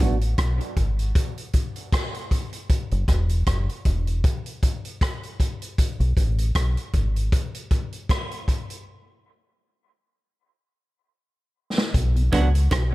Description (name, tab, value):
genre	dub reggae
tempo	78 BPM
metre	4/4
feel	swing 57% on 16ths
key	unclear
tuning	A4 = 439 Hz
part	semi-hollow electric guitar	accompaniment	0.0-0.1, 12.3-12.5 s	F#3 to F#4	-30 LUFS	right 5 dB	spring reverb, high-pass filter, low-pass filter, dub echo
part	deep dub fingered electric bass	bass	0.0-7.3, 11.9-12.9 s	E1 to C#2	-21 LUFS	equal	none
part	vintage drum kit	drums	0.0-12.9 s	hi-hat, kick drum, rim click, snare drum	-23 LUFS	equal	none
part	bongos	percussion	0.0-0.2, 12.3-12.9 s	none	-33 LUFS	right 4 dB	high-pass filter on perc, dub echo
part	mellow tonewheel organ	accompaniment	12.2-12.9 s	B2 to D4	-29 LUFS	equal	slow rotary speaker
room	little or no reverb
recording	none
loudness	-21 LUFS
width	side -19 dB against mid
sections	0.0-11.9 A section; 11.9-12.9 B section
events	break 0.0-11.9; drum fill 11.2-11.9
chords	0.0 Bm; 2.7 Esus2; 5.8 G#m; 8.9 N.C.; 11.9 Bm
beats	0.39 1.16 1.93 | 2.70 3.47 4.24 5.01 | 5.78 6.55 7.32 8.09 | 8.86 9.63 10.40 11.17 | 11.94 12.71